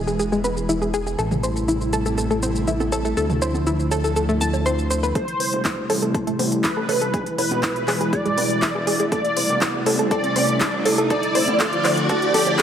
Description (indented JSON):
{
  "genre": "progressive house",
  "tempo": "121 BPM",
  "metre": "4/4",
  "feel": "straight",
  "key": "A minor",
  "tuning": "A4 = 440 Hz",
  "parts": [
    { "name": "airy breathy pad", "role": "sustained chords", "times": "0.0-12.6 s", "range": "B2 to E4", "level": "-26 LUFS", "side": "equal", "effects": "chorus, sidechain pumping" },
    { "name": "analog pluck", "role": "arpeggios", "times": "0.0-12.6 s", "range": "G#3 to A5", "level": "-24 LUFS", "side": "equal", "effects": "chorus, sidechain pumping, tape echo" },
    { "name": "fat analog bass", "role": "bass", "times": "0.0-12.6 s", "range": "E1 to D2", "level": "-27 LUFS", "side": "equal", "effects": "sidechain pumping, high-pass filter" },
    { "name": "deep house drum kit", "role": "drums", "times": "0.1-12.6 s", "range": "handclaps, hi-hat, shaker", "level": "-26 LUFS", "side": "equal", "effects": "sidechain pumping on perc, sidechain pumping on hats" },
    { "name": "electronic congas, toms and bongos", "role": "percussion", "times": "0.4-12.6 s", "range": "none", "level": "-30 LUFS", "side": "right 4 dB", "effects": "sidechain pumping on toms, sidechain pumping on perc" },
    { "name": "wide unison lead", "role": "melody", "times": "5.2-12.6 s", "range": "B4 to D5", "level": "-23 LUFS", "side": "equal", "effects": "ensemble chorus, sidechain pumping, dub echo" },
    { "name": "electronic kick drum", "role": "drums", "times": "5.2-12.6 s", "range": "none", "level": "-27 LUFS", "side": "equal", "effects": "high-pass filter on kick" },
    { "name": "riser", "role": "sound effects", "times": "7.2-12.6 s", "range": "none", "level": "-28 LUFS", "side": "right 1 dB", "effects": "none" }
  ],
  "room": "moderate lush hall reverb, RT60 1.7 s, digital ambience",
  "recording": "none",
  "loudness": "-18 LUFS",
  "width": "side -9 dB against mid",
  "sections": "0.0-5.2 A section; 5.2-12.6 B section",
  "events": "filter sweep on synth arpeggio sound 0.0-5.2, 5.2-12.6; build-up 5.2-12.6; filter sweep on analog synth pad 5.2-12.6; riser 7.2-12.6",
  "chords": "0.0 E; 1.2 Am7; 3.2 Dmadd9; 5.2 Am7; 7.1 E; 9.1 Am7; 11.1 Dmadd9"
}